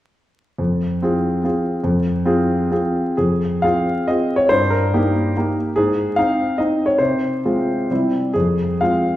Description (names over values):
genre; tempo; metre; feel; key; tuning
classical, romantic triple-time dance for piano with dotted rhythms; 117-157 BPM; 3/4; rubato; F minor; A4 = 440 Hz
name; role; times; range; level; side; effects
clear concert grand piano; solo; 0.6-9.2 s; F2 to F5; -16 LUFS; equal; none
room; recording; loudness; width
wet recital hall reverb, RT60 1.3 s; recorded in a church or concert hall, vinyl crackle; -16 LUFS; side -14 dB against mid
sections
0.6-3.2 A section; 3.2-9.2 B section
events
none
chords
0.6 Fm; 4.5 Eb/G; 5.8 Ab; 7.0 Fm/C; 7.9 C; 8.3 Fm